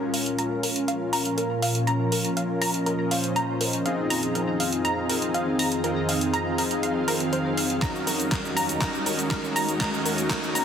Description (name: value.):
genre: progressive house.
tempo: 121 BPM.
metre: 4/4.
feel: straight.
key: Bb minor.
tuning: A4 = 440 Hz.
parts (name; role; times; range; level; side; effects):
evolving wavetable pad; sustained chords; 0.0-10.6 s; Eb2 to F5; -29 LUFS; right 2 dB; ensemble chorus, built-in reverb, phaser, sidechain pumping.
soft supersaw; stabs; 0.0-10.6 s; C4 to F5; -27 LUFS; left 2 dB; sidechain pumping, low-pass filter, digital delay.
riser; sound effects; 5.3-10.6 s; none; -37 LUFS; right 1 dB; none.
tight sequenced synth; arpeggios; 0.1-10.6 s; Bb4 to Bb5; -29 LUFS; equal; chorus, sidechain pumping, digital delay.
pop drum kit; drums; 0.1-10.6 s; cabasa, handclaps, hi-hat; -29 LUFS; right 1 dB; overdrive.
electronic kick drum; drums; 7.8-10.4 s; none; -29 LUFS; equal; overdrive.
room: moderate lush hall reverb, RT60 1.8 s.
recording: dense, heavily limited modern master, high-pass filter.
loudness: -22 LUFS.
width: side -8 dB against mid.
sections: 0.0-10.6 A section.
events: build-up 0.0-10.6; filter sweep on synth arpeggio sound 0.0-10.6; filter sweep on supersaw synth 0.0-10.6; filter sweep on ambient pad 0.0-10.6; riser 5.3-10.6; drum fill 7.8-10.6.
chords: 0.0 Bbm; 3.9 Fm7; 7.8 Ebm7.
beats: 0.39 0.88 1.38 | 1.87 2.37 2.87 3.36 | 3.86 4.35 4.85 5.34 | 5.84 6.34 6.83 7.33 | 7.82 8.32 8.81 9.31 | 9.81 10.30.